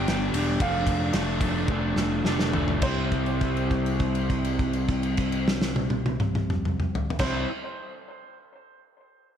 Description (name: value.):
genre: indie rock.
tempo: 102-116 BPM.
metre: 4/4.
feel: straight.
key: C major.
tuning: A4 = 440 Hz.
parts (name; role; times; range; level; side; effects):
warm upright piano; melody; 0.0-7.4 s; C5 to G5; -35 LUFS; right 2 dB; slapback echo, analog delay.
crunchy overdriven guitar; riff; 0.0-7.5 s; C3 to A4; -27 LUFS; equal; none.
growling picked electric bass; bass; 0.0-7.4 s; E1 to C2; -30 LUFS; equal; overdrive.
loose indie drum kit; drums; 0.1-7.3 s; crash cymbal, kick drum, ride cymbal, snare drum, toms; -28 LUFS; equal; none.
room: moderate lush hall reverb, RT60 1.7 s, small room ambience.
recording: big arena sound.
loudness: -23 LUFS.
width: side -8 dB against mid.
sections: 0.0-2.8 A section; 2.8-7.6 B section.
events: slowing down 0.0-2.8; drum fill 1.7-2.8; held note 2.8-7.2.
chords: 0.0 G; 0.6 Dm/F; 2.8 C.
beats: 0.09 | 0.61 1.14 1.69 2.25 | 2.83 3.42 4.01 4.60 | 5.19 5.78 6.37 6.96.